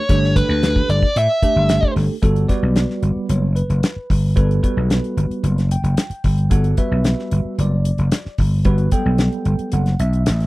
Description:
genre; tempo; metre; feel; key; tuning
electric jazz fusion; 112 BPM; 4/4; straight; G lydian; A4 = 440 Hz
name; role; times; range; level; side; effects
dark smooth lead guitar; melody; 0.0-1.9 s; B4 to E5; -18 LUFS; equal; overdrive, slapback echo
bell-like tine electric piano; accompaniment; 0.1-10.5 s; F#3 to G5; -24 LUFS; right 2 dB; medium stereo tremolo, lush chorus
vintage slap bass; bass; 0.1-10.5 s; F#1 to A2; -17 LUFS; equal; none
damped 70s drum kit; drums; 0.1-10.5 s; hi-hat, kick drum, snare drum; -19 LUFS; equal; none
room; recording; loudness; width
little or no reverb; dry, close 1970s-style studio recording; -15 LUFS; side -19 dB against mid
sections
0.0-2.2 A section; 2.2-10.5 B section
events
none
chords
0.0 A9sus4; 2.2 Gmaj9

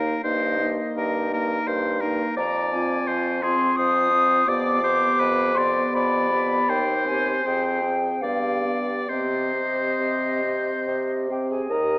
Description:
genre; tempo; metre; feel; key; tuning
classical, slow romantic movement for wind quintet; 65-86 BPM; 3/4; rubato; C minor; A4 = 440 Hz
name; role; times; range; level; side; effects
silver concert flute; melody; 0.0-12.0 s; Eb5 to Eb6; -24 LUFS; left 1 dB; none
clear oboe; second line; 0.0-12.0 s; Ab4 to Eb5; -26 LUFS; left 1 dB; none
dark clarinet; accompaniment; 0.0-12.0 s; Eb4 to Bb4; -31 LUFS; right 2 dB; none
warm French horn; accompaniment; 0.0-12.0 s; Bb3 to G4; -31 LUFS; equal; none
mellow bassoon; bass; 0.0-12.0 s; Eb2 to C3; -27 LUFS; equal; none
room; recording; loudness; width
wet concert hall reverb, RT60 2.4 s; small speaker sound; -20 LUFS; side -23 dB against mid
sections
0.0-11.7 A section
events
none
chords
0.2 Eb/G; 2.4 Fm; 4.5 G7/F; 6.7 Cm/Eb; 7.4 Fmadd9; 8.2 G7; 9.1 Cm

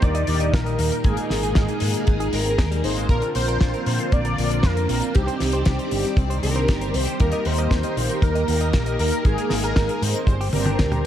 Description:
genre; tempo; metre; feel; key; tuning
italo disco; 117 BPM; 4/4; straight; unclear; A4 = 442 Hz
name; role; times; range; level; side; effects
wide unison lead; melody; 0.0-11.1 s; G4 to D5; -26 LUFS; equal; ensemble chorus, cassette tape, tape echo
phased string machine; sustained chords; 0.0-11.1 s; Bb2 to D5; -28 LUFS; equal; ensemble chorus, phaser
direct-recorded clean electric guitar; arpeggios; 0.0-11.0 s; G3 to Eb5; -33 LUFS; right 2 dB; tape echo
mellow synth brass; stabs; 0.0-11.1 s; Bb3 to C5; -29 LUFS; left 1 dB; chorus
fingered electric bass; bass; 0.0-11.0 s; G1 to Bb2; -24 LUFS; equal; tube saturation
damped 70s drum kit; drums; 0.0-11.0 s; hi-hat, snare drum, toms; -28 LUFS; left 2 dB; small room ambience
kick drum; drums; 0.0-10.9 s; none; -19 LUFS; equal; small room ambience
room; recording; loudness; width
light reverb, small room ambience; dark, warm production; -19 LUFS; side -11 dB against mid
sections
0.0-11.1 A section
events
drum fill 10.5-11.1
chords
0.0 Eb; 1.0 Absus2; 3.1 Bbadd9; 5.1 Cmadd9; 7.2 Eb; 9.3 Absus2; 10.3 Gsus4

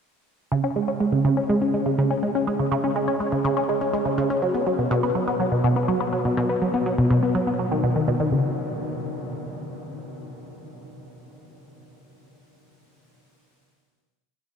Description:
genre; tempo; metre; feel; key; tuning
ambient; 123 BPM; 4/4; straight; unclear; A4 = 440 Hz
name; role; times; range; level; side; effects
resonant blip pluck; solo; 0.5-8.5 s; B2 to C#4; -21 LUFS; equal; phaser, ping-pong delay
room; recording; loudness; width
wet huge ambient reverb, RT60 7.5 s; dark, warm production; -21 LUFS; side -7 dB against mid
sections
0.5-8.3 A section; 8.3-12.2 final chord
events
none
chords
none

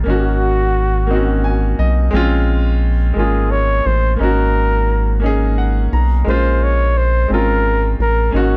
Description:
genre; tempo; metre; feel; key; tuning
slow six-eight R&B; 58 BPM (dotted quarters); 6/8; straight; Bb minor; A4 = 442 Hz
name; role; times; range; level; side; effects
bright concert grand piano; accompaniment; 0.0-8.6 s; Ab3 to Bb5; -22 LUFS; equal; none
rubbery square bass; bass; 0.0-8.6 s; Ab1 to Cb2; -18 LUFS; equal; none
warm flugelhorn; melody; 0.1-8.6 s; Gb4 to Db5; -22 LUFS; equal; none
room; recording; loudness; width
light reverb; none; -16 LUFS; mono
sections
0.0-8.6 A section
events
grand piano fill 1.1-2.1, 5.2-6.3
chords
0.1 Ab9sus4; 2.1 Bbm9; 4.2 Ab9sus4; 6.3 Bbm9

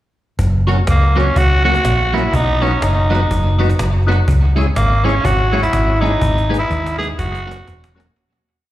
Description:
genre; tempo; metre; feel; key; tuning
ska; 124 BPM; 4/4; swing 58% on 8ths; F# mixolydian; A4 = 437 Hz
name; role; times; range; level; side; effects
hollow-body short-scale fingered electric bass; bass; 0.4-8.1 s; E1 to D#2; -15 LUFS; equal; none
cajon; drums; 0.4-8.1 s; none; -24 LUFS; equal; tape echo
clean electric guitar; accompaniment; 0.7-8.1 s; F#3 to G#4; -24 LUFS; right 3 dB; wide subtle chorus, tape echo, plate reverb, slapback echo
percussive tonewheel organ; stabs; 0.7-8.1 s; C#4 to C#5; -24 LUFS; left 5 dB; overdrive, chorus vibrato, slow rotary speaker, plate reverb, slapback echo
raspy tenor saxophone; melody; 0.9-7.9 s; A#3 to G#4; -18 LUFS; right 1 dB; tape echo, plate reverb, slapback echo
room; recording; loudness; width
light reverb; live gig heard through the venue's PA, recital hall reverb; -13 LUFS; side -14 dB against mid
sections
0.4-8.2 A section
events
fade-out 6.2-8.2; drum fill 6.2-8.2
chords
0.4 F#; 2.3 B; 4.3 C#m; 6.2 G#m; 7.2 F#

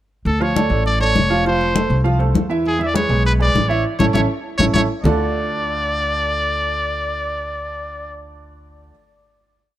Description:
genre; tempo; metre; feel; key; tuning
latin, salsa; 200 BPM; 4/4; straight; D harmonic minor; A4 = 440 Hz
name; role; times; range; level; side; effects
bright trumpet; melody; 0.3-8.2 s; G#4 to E5; -21 LUFS; equal; none
upright bass; bass; 0.3-8.9 s; F1 to E2; -21 LUFS; equal; none
congas; percussion; 0.3-5.1 s; none; -21 LUFS; left 4 dB; none
clear grand piano; accompaniment; 0.4-8.9 s; D3 to F5; -22 LUFS; right 3 dB; none
room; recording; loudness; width
light reverb; dark, warm production, faint mains hum; -16 LUFS; side -13 dB against mid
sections
0.3-5.0 verse; 5.0-7.4 final chord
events
band accent 3.8-5.0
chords
0.3 Dm; 1.5 F; 2.6 E7; 3.8 A; 5.0 Dm

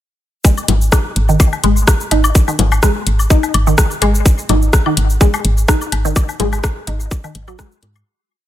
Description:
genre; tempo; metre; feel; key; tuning
minimal techno; 126 BPM; 4/4; swing 54% on 16ths; unclear; A4 = 440 Hz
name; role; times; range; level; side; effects
resonant blip pluck; riff; 0.4-7.6 s; D#3 to D#4; -20 LUFS; equal; phaser, analog chorus, sidechain pumping, ping-pong delay
electronic kick drum; drums; 0.4-7.7 s; none; -12 LUFS; equal; studio reverb
garage drum kit; drums; 0.4-8.0 s; hi-hat, rim click, shaker; -19 LUFS; left 1 dB; studio reverb
woodblock, congas and claves; percussion; 0.6-8.0 s; none; -22 LUFS; left 7 dB; studio reverb, tape echo
woody FM bass; bass; 0.7-8.0 s; G#1 to G#2; -15 LUFS; equal; sidechain pumping
room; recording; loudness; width
digital ambience; none; -12 LUFS; side -13 dB against mid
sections
0.4-8.1 drop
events
drop 0.4-8.1; fade-out 5.5-8.1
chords
0.4 G#5

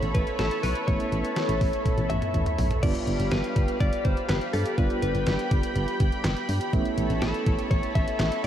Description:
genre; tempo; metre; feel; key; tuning
synth-pop; 123 BPM; 4/4; straight; G mixolydian; A4 = 435 Hz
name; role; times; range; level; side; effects
direct-recorded clean electric guitar; melody; 0.0-8.5 s; A4 to E5; -31 LUFS; left 2 dB; wide subtle chorus, analog delay
soft electric-piano-like synth keys; accompaniment; 0.0-8.5 s; G3 to F4; -32 LUFS; right 3 dB; chorus, tremolo
lush unison pad; sustained chords; 0.0-8.5 s; G4 to B5; -32 LUFS; equal; chorus
solid FM bass; bass; 0.0-8.5 s; G1 to G2; -27 LUFS; equal; none
detuned 8-bit digital drum machine; drums; 0.0-8.5 s; crash cymbal, handclaps, hi-hat, kick drum, snare drum, toms; -28 LUFS; equal; none
room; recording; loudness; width
moderate huge ambient reverb, RT60 8.1 s; dreamy mix soaked in reverb; -23 LUFS; side -10 dB against mid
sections
0.0-2.8 A section; 2.8-8.5 B section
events
drum fill 1.9-2.8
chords
0.0 Aadd9; 2.8 G7; 6.7 Aadd9

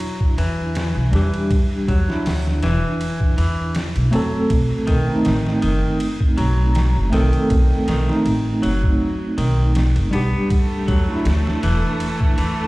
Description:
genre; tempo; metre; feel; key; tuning
trip hop; 80 BPM; 4/4; swing 54% on 16ths; E minor; A4 = 442 Hz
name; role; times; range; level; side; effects
tine electric piano; accompaniment; 0.0-12.7 s; G3 to A4; -23 LUFS; right 1 dB; medium tremolo, tape echo
clean electric guitar; arpeggios; 0.0-12.7 s; D#3 to B3; -25 LUFS; equal; low-pass filter, tape echo
boom bap sampler-style drum kit; drums; 0.0-12.6 s; hi-hat, kick drum, ride cymbal, snare drum; -23 LUFS; equal; none
upright bass; bass; 0.4-12.7 s; E1 to E2; -19 LUFS; equal; none
rich chamber string section; sustained chords; 10.5-12.7 s; A3; -26 LUFS; right 2 dB; none
room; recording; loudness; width
light reverb, digital ambience; played on a big sound system in a bare room, stone room reverb, vinyl crackle; -16 LUFS; side -20 dB against mid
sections
0.0-12.7 A section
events
filter sweep on clean electric guitar 0.0-12.7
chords
0.0 Em7; 4.5 B7b9; 10.5 Em7

